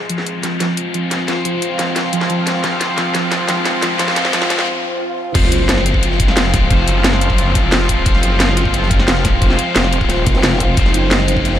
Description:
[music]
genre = dark technical drum and bass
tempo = 177 BPM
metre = 4/4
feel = straight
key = F phrygian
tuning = A4 = 440 Hz
[part]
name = sweeping resonant pad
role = sustained chords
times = 0.0-11.6 s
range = F3 to F4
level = -21 LUFS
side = right 1 dB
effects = chorus, sidechain pumping
[part]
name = scooped high-gain guitar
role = stabs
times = 0.0-11.6 s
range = Ab3 to C5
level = -21 LUFS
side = left 4 dB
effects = distortion, low-pass filter, digital delay
[part]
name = riser, swell and sub drop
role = sound effects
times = 1.6-6.7 s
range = none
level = -24 LUFS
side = equal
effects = none
[part]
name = soft round pluck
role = arpeggios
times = 0.1-4.4 s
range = F3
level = -24 LUFS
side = right 1 dB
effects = analog chorus, sidechain pumping, digital delay
[part]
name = drum and bass drum kit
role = drums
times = 0.1-11.5 s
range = crash cymbal, hi-hat, snare drum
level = -19 LUFS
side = equal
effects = high-pass filter on hats, high-pass filter on snare, high-pass filter on cymbals, high-pass filter on room
[part]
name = snarling distorted saw bass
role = bass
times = 5.3-11.6 s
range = Eb1 to Gb1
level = -17 LUFS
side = equal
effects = distortion, tube saturation, sidechain pumping
[part]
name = electronic kick drum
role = drums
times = 5.3-11.4 s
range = none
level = -17 LUFS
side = equal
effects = none
[part]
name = crunchy breakbeat drum kit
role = drums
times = 5.4-11.6 s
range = ride cymbal, snare drum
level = -31 LUFS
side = equal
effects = none
[part]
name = metallic wobble bass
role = bass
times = 10.3-10.8 s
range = F1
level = -17 LUFS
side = equal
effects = chorus
[sound]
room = light reverb, digital ambience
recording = high-pass filter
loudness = -13 LUFS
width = side -11 dB against mid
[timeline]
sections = 0.0-5.3 A section; 5.3-11.6 B section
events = build-up 0.0-5.3; drum fill 0.0-4.7; filter sweep on synth pluck 0.0-5.3; break 4.7-5.3; swell 4.7-5.3; drop 5.3-11.6; impact 5.3-6.7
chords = 0.0 Fm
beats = 0.27 0.60 0.94 | 1.28 1.62 1.96 2.30 | 2.64 2.98 3.32 3.65 | 3.99 4.33 4.67 5.01 | 5.35 5.69 6.03 6.37 | 6.71 7.04 7.38 7.72 | 8.06 8.40 8.74 9.08 | 9.42 9.76 10.10 10.43 | 10.77 11.11 11.45

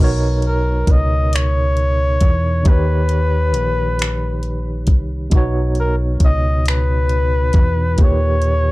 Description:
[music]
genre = slow six-eight R&B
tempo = 45 BPM (dotted quarters)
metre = 6/8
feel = straight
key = B major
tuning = A4 = 440 Hz
[part]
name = barky tine electric piano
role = accompaniment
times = 0.0-8.7 s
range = A#2 to C#5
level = -23 LUFS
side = right 2 dB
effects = overdrive, fast tremolo
[part]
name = deep dub fingered electric bass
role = bass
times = 0.0-8.7 s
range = A#1 to E2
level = -18 LUFS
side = equal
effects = none
[part]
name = smooth R&B drum kit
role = drums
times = 0.4-8.6 s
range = finger snaps, hi-hat, kick drum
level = -14 LUFS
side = equal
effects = none
[part]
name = warm flugelhorn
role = melody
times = 0.5-8.7 s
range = A#4 to D#5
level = -21 LUFS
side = left 2 dB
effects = none
[sound]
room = little or no reverb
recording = dark, warm production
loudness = -14 LUFS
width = side -19 dB against mid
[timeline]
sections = 0.0-8.7 A section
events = none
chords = 0.0 Bmaj9; 2.7 D#7b13; 5.3 Badd9; 8.0 D#7b13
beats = 1.32 | 2.65 3.99 | 5.32 6.66 | 7.99

